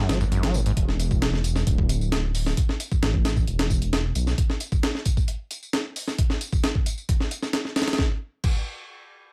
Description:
breakbeat, breaks; 133 BPM; 4/4; straight; A4 = 440 Hz
overdriven acid bass; riff; 0.0-0.7 s; F#2 to F#3; -29 LUFS; equal; distortion, dub echo
dark detuned saw bass; bass; 0.1-4.3 s; D1 to B1; -27 LUFS; equal
breakbeat sampler-style drum kit; drums; 0.1-8.6 s; crash cymbal, hi-hat, kick drum, snare drum; -26 LUFS; equal
tambourine; drums; 0.1-8.0 s; -40 LUFS; equal
little or no reverb; -24 LUFS; mono
0.0-8.0 A section; 8.0-9.3 B section
0.0 F#m9; 0.8 E7sus4; 8.0 N.C.

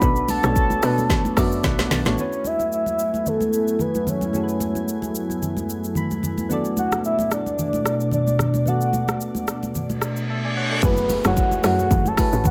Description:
amapiano; 111 BPM; 4/4; swing 55% on 16ths; A4 = 440 Hz
soft octave-layered synth lead; melody; 0.0-12.5 s; A4 to B5; -27 LUFS; equal; chorus, tremolo, tape echo
soft electric-piano-like synth keys; accompaniment; 0.0-12.5 s; A3 to B5; -30 LUFS; equal; chorus
glassy FM pad; sustained chords; 0.3-10.8 s; F#2 to G#5; -29 LUFS; equal; ensemble chorus, built-in reverb, sidechain pumping
tight log drum bass; bass; 0.0-2.2, 10.8-12.4 s; F#1 to B2; -26 LUFS; equal
deep house drum kit; drums; 0.0-12.5 s; hi-hat, kick drum, rim click, shaker, snare drum; -26 LUFS; equal
congas; percussion; 0.0-12.5 s; -31 LUFS; equal
reverse cymbal and downlifter; sound effects; 10.1-12.5 s; -32 LUFS; equal
light reverb; -22 LUFS; mono
0.0-2.2 A section; 2.2-10.8 B section; 10.8-12.5 A section
drop 0.0-2.2, 10.8-12.5; synth keys fill 1.1-2.2, 5.7-6.5; drum fill 1.6-2.2; reverse cymbal 10.1-10.8
0.0 Bm9; 2.2 F#m11; 6.5 Bm7; 10.8 F#m11

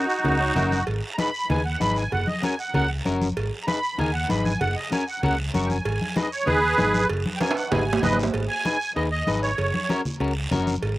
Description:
latin, cumbia; 193 BPM; 4/4; straight; G# minor; A4 = 441 Hz
musette accordion; melody; 0.0-10.0 s; D#4 to C#6; -25 LUFS; right 2 dB
electric guitar at the edge of break-up; accompaniment; 0.0-10.7 s; C#4 to F#5; -27 LUFS; left 3 dB
guiro; percussion; 0.1-11.0 s; -37 LUFS; right 3 dB
fingered electric bass; bass; 0.2-11.0 s; F#1 to D#2; -27 LUFS; equal
congas; percussion; 0.2-11.0 s; -28 LUFS; left 1 dB
cowbell and timbales; percussion; 0.2-11.0 s; -30 LUFS; right 4 dB
little or no reverb; recorded outdoors, with no room sound; -21 LUFS; side -17 dB against mid
0.0-8.3 A section; 8.3-11.0 B section
accordion solo 0.0-8.3; clean electric guitar fill 0.2-0.9; drum fill 7.4-8.3
0.0 F#; 0.9 G#m; 2.1 F#; 3.4 G#m; 4.6 F#; 5.9 G#m; 7.1 F#; 7.7 G#m; 9.6 F#

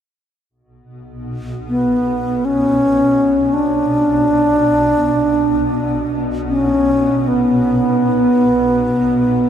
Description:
world meditative, free-time meditation music; free time; B minor; A4 = 439 Hz
granular cloud pad; drone; 0.9-9.5 s; B1 to B2; -21 LUFS; equal; built-in reverb
wooden-headed alto flute; melody; 1.7-9.5 s; B3 to D4; -14 LUFS; equal; tape echo
wet huge ambient reverb, RT60 6.5 s; -13 LUFS; side -9 dB against mid
0.5-9.5 A section

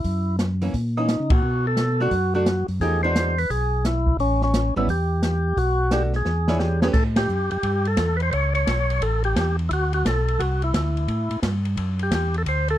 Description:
soul jazz organ trio; 174 BPM; 4/4; swing 64% on 8ths; A mixolydian; A4 = 443 Hz
percussive tonewheel organ; melody; 0.0-12.8 s; C#4 to C#5; -24 LUFS; equal; slow rotary speaker
mellow tonewheel organ; bass; 0.0-12.8 s; G#1 to C#3; -23 LUFS; equal; overdrive, chorus vibrato, slow rotary speaker
open jazz drum kit; drums; 0.0-12.7 s; crash cymbal, hi-hat, kick drum, ride cymbal, snare drum; -26 LUFS; equal
archtop guitar, miked and amplified; accompaniment; 0.6-6.9 s; E3 to C#5; -26 LUFS; right 2 dB
little or no reverb; dry, close 1970s-style studio recording; -20 LUFS; side -12 dB against mid
0.0-6.9 A section; 6.9-12.8 A section
band accent 1.3, 7.1; drum fill 6.3-6.9
0.0 F#7; 1.4 Bm7; 2.8 E9; 4.2 A7; 5.6 Bm7; 6.3 E6; 6.9 A9; 9.7 Dsus2; 11.1 A5

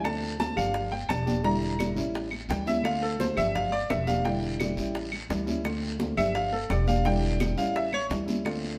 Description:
latin, Cuban son and guajira; 171 BPM; 4/4; straight; D minor; A4 = 444 Hz
nylon-string guitar; accompaniment; 0.0-8.8 s; D3 to G4; -33 LUFS; equal
bright concert grand piano; arpeggios; 0.0-8.0 s; A4 to Bb5; -32 LUFS; equal
upright bass; bass; 0.0-8.8 s; E1 to D2; -35 LUFS; equal
claves; percussion; 0.0-8.6 s; -41 LUFS; equal
congas; percussion; 0.0-8.8 s; -38 LUFS; equal
guiro; percussion; 0.0-8.8 s; -45 LUFS; equal
bongos; percussion; 0.1-8.6 s; -39 LUFS; equal
wet stone room reverb, RT60 1.2 s; band playing live in one room; -28 LUFS; mono
0.0-8.8 A section
grand piano solo 0.0-8.8
0.0 Dm7; 0.7 Gm7; 1.4 Em7b5; 2.1 A7; 2.8 Dm7; 3.5 Gm7; 4.3 Em7; 5.0 A7; 5.7 Dm7; 6.4 Gm7; 7.1 Em7; 7.8 A7

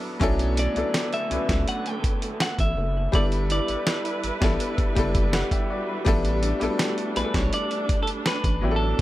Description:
contemporary R&B; 82 BPM; 4/4; straight; A4 = 440 Hz
bright grand piano; accompaniment; 0.0-9.0 s; F#3 to F#5; -28 LUFS; left 2 dB
dark studio string section; sustained chords; 0.0-9.0 s; D3 to B4; -32 LUFS; right 3 dB; sidechain pumping
rubbery square bass; bass; 0.2-9.0 s; F#1 to C#2; -26 LUFS; equal
dusty soul sampler-style drum kit; drums; 0.2-9.0 s; hi-hat, kick drum, snare drum; -25 LUFS; equal
handpan; texture; 0.2-8.3 s; A3 to A4; -39 LUFS; right 1 dB
clean electric guitar; melody; 0.6-9.0 s; A4 to G5; -29 LUFS; equal
studio ambience; -22 LUFS; side -15 dB against mid
0.0-9.0 A section
0.2 Bm11; 3.1 G6; 6.1 A7sus4

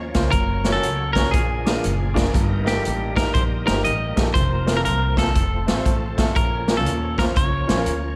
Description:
uptempo gospel; 119 BPM; 4/4; swing 65% on 8ths; Bb harmonic minor; A4 = 440 Hz
semi-hollow electric guitar; melody; 0.0-8.2 s; G4 to Eb5; -27 LUFS; equal; slapback echo
bright tonewheel organ; sustained chords; 0.0-8.2 s; F3 to Db5; -34 LUFS; equal; fast rotary speaker, overdrive, chorus vibrato
upright bass; bass; 0.0-8.2 s; F1 to Eb2; -27 LUFS; equal
clear baby grand piano; accompaniment; 0.1-7.9 s; G2 to Db5; -29 LUFS; equal; slapback echo
swinging big-band drum kit; drums; 0.1-8.0 s; hi-hat, kick drum, snare drum; -24 LUFS; equal
light reverb; -21 LUFS; mono
0.0-8.2 A section
0.3 Gb; 1.3 Bb7; 2.3 Eb/G; 4.4 Fsus4; 5.4 F; 6.4 Bbm

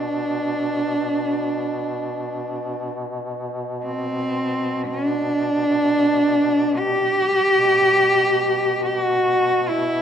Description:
caucasian folk, Caucasian lament; free time; B phrygian; A4 = 439 Hz
warm cello; melody; 0.0-10.0 s; C4 to G4; -18 LUFS; equal
warm duduk; drone; 0.0-10.0 s; B2; -28 LUFS; left 1 dB
moderate concert hall reverb, RT60 1.8 s; minimal, uncompressed stereo recording; -18 LUFS; side -8 dB against mid
0.0-10.0 A section

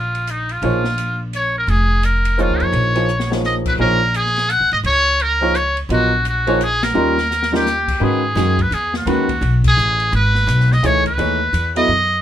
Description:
modal jazz; 170 BPM; 3/4; swing 62% on 8ths; Bb minor, G# phrygian from 8.0 s; A4 = 440 Hz
trumpet with metal mute; melody; 0.0-12.2 s; Eb4 to Gb5; -18 LUFS; equal
upright bass; bass; 0.0-12.2 s; F1 to G#2; -19 LUFS; equal
open jazz drum kit; drums; 0.1-11.8 s; crash cymbal, hi-hat, kick drum, ride cymbal, snare drum; -28 LUFS; left 2 dB
warm grand piano; accompaniment; 0.6-11.9 s; D#3 to Eb5; -19 LUFS; equal
light reverb; minimal, uncompressed stereo recording; -14 LUFS; side -11 dB against mid
0.0-8.0 A section; 8.0-12.2 B section
drum fill 3.1-3.4, 7.3-7.7; band accent 6.8, 9.6
0.0 Bbm7; 3.8 Gb; 7.0 Eb7; 8.0 G#m7

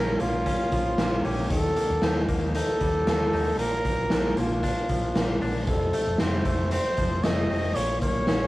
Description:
jangly indie pop; 115 BPM; 4/4; straight; A4 = 440 Hz
breathy trumpet; melody; 0.0-8.5 s; F4 to Eb5; -28 LUFS; equal
direct-recorded clean electric guitar; arpeggios; 0.0-8.5 s; F2 to Eb4; -32 LUFS; left 1 dB
hollow-body short-scale fingered electric bass; bass; 0.0-8.5 s; F1 to Eb2; -31 LUFS; equal
raw garage drum kit; drums; 0.2-8.4 s; hi-hat, kick drum, snare drum; -26 LUFS; equal
moderate stone room reverb, RT60 1.3 s; rough rehearsal-room recording, warm saturation, vinyl crackle; -22 LUFS; side -18 dB against mid
0.0-8.5 A section
0.0 Bbm; 1.5 Eb; 3.6 Bb; 5.7 F; 7.8 Bbm

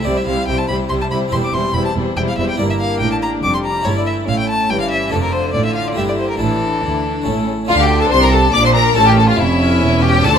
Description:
classical, baroque-style concerto movement with solo episodes; 142 BPM; 3/4; straight; D minor; A4 = 440 Hz
rich chamber violin section; melody; 0.0-10.4 s; E4 to D6; -21 LUFS; left 4 dB
rich violin; melody; 0.0-10.4 s; E4 to D6; -20 LUFS; left 2 dB
rich chamber violin section; second line; 0.0-10.4 s; C#4 to D5; -23 LUFS; left 3 dB
harpsichord; accompaniment; 0.0-10.4 s; D2 to Bb4; -24 LUFS; equal
rich chamber viola section; accompaniment; 0.0-10.4 s; D3 to D4; -23 LUFS; left 1 dB
rich chamber double bass section; bass; 0.1-10.4 s; E1 to D2; -21 LUFS; right 4 dB
warm chamber cello section; bass; 0.1-10.4 s; D2 to D3; -21 LUFS; right 1 dB
moderate recital hall reverb, RT60 1.5 s; close, detailed microphones; -13 LUFS; side -7 dB against mid
0.0-7.7 A section; 7.7-10.4 B section
0.1 C; 1.3 C/E; 2.6 Em7b5/G; 3.9 A7/G; 5.1 Dm/F; 6.0 Gm; 6.4 Asus4; 7.3 A; 7.7 Dm; 9.0 A7

